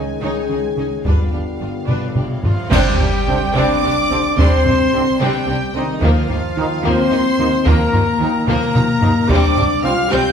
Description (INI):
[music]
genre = cinematic, epic orchestral film score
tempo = 73 BPM (dotted quarters)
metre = 6/8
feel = straight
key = C minor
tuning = A4 = 442 Hz
[part]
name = rich studio violin section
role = melody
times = 0.0-10.3 s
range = Eb5 to G6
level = -26 LUFS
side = left 1 dB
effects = none
[part]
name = rich chamber violin section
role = second line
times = 0.0-10.3 s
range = G3 to Db5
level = -26 LUFS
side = left 2 dB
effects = none
[part]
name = clear symphonic viola section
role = accompaniment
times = 0.0-10.3 s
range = F3 to Eb4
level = -24 LUFS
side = right 1 dB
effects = none
[part]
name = clear trombone section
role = sustained chords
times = 0.0-9.9 s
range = D3 to Eb4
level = -27 LUFS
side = right 2 dB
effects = none
[part]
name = mellow French horn section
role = sustained chords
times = 0.0-10.3 s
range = Eb3 to Ab4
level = -21 LUFS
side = left 4 dB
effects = none
[part]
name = clear symphonic double bass section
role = bass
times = 0.0-10.2 s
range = G1 to Eb2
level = -25 LUFS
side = right 3 dB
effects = none
[part]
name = rich symphonic cello section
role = bass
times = 0.0-10.2 s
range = G2 to Eb3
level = -25 LUFS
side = right 2 dB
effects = none
[part]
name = taiko ensemble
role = drums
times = 1.0-9.8 s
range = none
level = -17 LUFS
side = equal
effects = none
[part]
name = clear trumpet section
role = stabs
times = 2.4-10.3 s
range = Eb4 to G5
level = -21 LUFS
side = right 1 dB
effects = none
[part]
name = clash cymbals and concert bass drum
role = percussion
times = 2.7-3.8 s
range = none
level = -24 LUFS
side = equal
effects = none
[sound]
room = wet recital hall reverb, RT60 1.3 s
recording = recorded in a church or concert hall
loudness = -14 LUFS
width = side -7 dB against mid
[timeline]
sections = 0.0-2.7 A section; 2.7-10.3 B section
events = drum fill 1.9-2.7, 8.5-9.3; band accent 2.7-3.3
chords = 0.0 Dbsus2; 1.1 G7; 2.7 Csus2; 6.0 Ebsus2; 9.3 Csus2